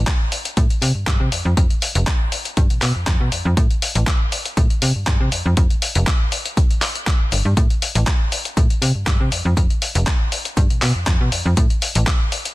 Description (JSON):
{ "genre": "filtered disco house", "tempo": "120 BPM", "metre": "4/4", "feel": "swing 53% on 16ths", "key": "A minor", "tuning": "A4 = 440 Hz", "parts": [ { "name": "slap-like FM bass", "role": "bass", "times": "0.0-12.0 s", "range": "F1 to C3", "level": "-18 LUFS", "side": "equal", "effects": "sidechain pumping, low-pass filter" }, { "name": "dusty soul sampler-style drum kit", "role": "drums", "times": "0.1-12.5 s", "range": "handclaps, hi-hat", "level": "-23 LUFS", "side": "left 2 dB", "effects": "sidechain pumping on hats" }, { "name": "electronic kick drum", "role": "drums", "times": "0.1-12.2 s", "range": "none", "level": "-18 LUFS", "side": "equal", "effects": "none" } ], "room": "digital ambience", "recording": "dense, heavily limited modern master", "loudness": "-16 LUFS", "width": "side -19 dB against mid", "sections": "0.0-12.5 A section", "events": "none", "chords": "none" }